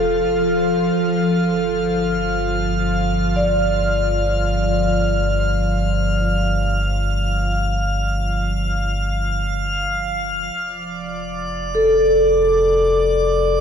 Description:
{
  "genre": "ambient",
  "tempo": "50 BPM",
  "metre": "4/4",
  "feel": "straight",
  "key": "unclear",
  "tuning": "A4 = 440 Hz",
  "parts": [
    { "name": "vibraphone with medium hard mallets", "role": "arpeggios", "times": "0.0-13.6 s", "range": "A4 to D5", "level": "-19 LUFS", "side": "left 1 dB", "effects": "ping-pong delay" },
    { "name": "warm sub bass", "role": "bass", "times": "0.0-13.6 s", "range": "F1 to G1", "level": "-23 LUFS", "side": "equal", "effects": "none" },
    { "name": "bowed-like drone", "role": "drone", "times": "0.0-10.7 s", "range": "F3 to F4", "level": "-24 LUFS", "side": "right 1 dB", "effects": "built-in reverb" },
    { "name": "drifting glass-harmonics texture", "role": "texture", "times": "0.0-13.6 s", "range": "D5 to F6", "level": "-24 LUFS", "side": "right 1 dB", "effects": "chorus, built-in reverb" }
  ],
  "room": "wet lush hall reverb, RT60 2.7 s",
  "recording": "dark, warm production",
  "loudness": "-17 LUFS",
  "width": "side -7 dB against mid",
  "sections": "0.0-10.6 A section; 10.6-13.6 A section",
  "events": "fade-in on synth texture 0.0-10.6",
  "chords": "0.0 F; 1.0 Gsus2; 10.6 F"
}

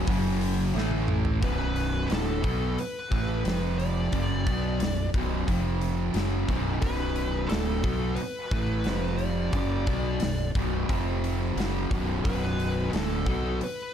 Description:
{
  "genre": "stoner and doom metal",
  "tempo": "89 BPM",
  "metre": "4/4",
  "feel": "straight",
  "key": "B minor",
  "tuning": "A4 = 440 Hz",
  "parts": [
    { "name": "fuzz guitar", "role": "riff", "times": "0.0-13.6 s", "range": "B1 to B3", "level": "-29 LUFS", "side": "equal", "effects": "distortion" },
    { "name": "fuzz fingered electric bass", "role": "bass", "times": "0.0-13.6 s", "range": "B0 to B1", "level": "-30 LUFS", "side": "equal", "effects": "overdrive" },
    { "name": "big rock drum kit", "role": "drums", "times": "0.1-13.8 s", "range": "hi-hat, kick drum, snare drum, toms", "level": "-31 LUFS", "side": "equal", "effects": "none" },
    { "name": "fuzz lead guitar", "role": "melody", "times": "1.4-13.9 s", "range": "A4 to D5", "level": "-35 LUFS", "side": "equal", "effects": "wah, distortion, ping-pong delay" }
  ],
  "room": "little or no reverb",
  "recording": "dark, warm production",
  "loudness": "-25 LUFS",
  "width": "side -9 dB against mid",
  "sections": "0.0-1.4 A section; 1.4-13.9 B section",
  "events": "drum fill 0.8-1.4",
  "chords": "0.1 F#5; 0.8 A5; 1.4 Bm; 3.5 F5; 4.1 Bm; 5.5 F5; 6.2 Bm; 8.9 F5; 9.5 Bm; 10.9 F5; 11.6 Bm"
}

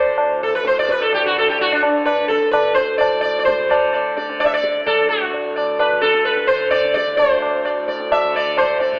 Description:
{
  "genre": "indian classical, Hindustani",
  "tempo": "129 BPM",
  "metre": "4/4",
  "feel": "straight",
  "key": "D raga khamaj",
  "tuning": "A4 = 440 Hz",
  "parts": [
    { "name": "sitar", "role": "melody", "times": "0.0-9.0 s", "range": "D4 to E5", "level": "-19 LUFS", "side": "equal", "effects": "none" },
    { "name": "tanpura", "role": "drone", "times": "0.0-9.0 s", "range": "D2 to D3", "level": "-30 LUFS", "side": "equal", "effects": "none" },
    { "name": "tabla", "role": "percussion", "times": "0.2-9.0 s", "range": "none", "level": "-23 LUFS", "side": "equal", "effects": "none" }
  ],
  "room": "moderate scoring stage reverb, RT60 1.7 s",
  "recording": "telephone sound",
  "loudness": "-18 LUFS",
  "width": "mono",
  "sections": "0.0-9.0 A section",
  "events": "none",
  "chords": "none"
}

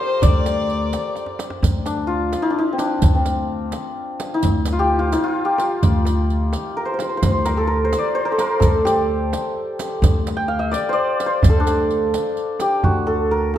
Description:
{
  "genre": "Persian modal ensemble",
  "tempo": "86 BPM (dotted quarters)",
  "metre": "6/8",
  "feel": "straight",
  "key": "D dastgah shur",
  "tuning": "A4 = 440 Hz",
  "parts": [
    { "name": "santur", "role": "melody", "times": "0.0-13.6 s", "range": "C4 to G5", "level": "-20 LUFS", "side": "left 1 dB", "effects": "none" },
    { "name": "rich violin", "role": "second line", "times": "0.0-1.4 s", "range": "C5 to D5", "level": "-25 LUFS", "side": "left 3 dB", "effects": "none" },
    { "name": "upright bass", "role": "bass", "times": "0.2-13.5 s", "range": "D2", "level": "-20 LUFS", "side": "equal", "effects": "none" },
    { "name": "riq", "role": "percussion", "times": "0.2-12.7 s", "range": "none", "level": "-31 LUFS", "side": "right 4 dB", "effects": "none" },
    { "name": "tombak", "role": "percussion", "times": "0.2-13.6 s", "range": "none", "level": "-22 LUFS", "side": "right 1 dB", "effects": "none" }
  ],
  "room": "moderate recital hall reverb, RT60 1.3 s",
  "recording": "dark, warm production",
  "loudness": "-17 LUFS",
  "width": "side -11 dB against mid",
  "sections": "0.0-1.6 A section; 1.6-12.8 B section",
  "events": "drum fill 1.2-1.6",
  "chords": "none"
}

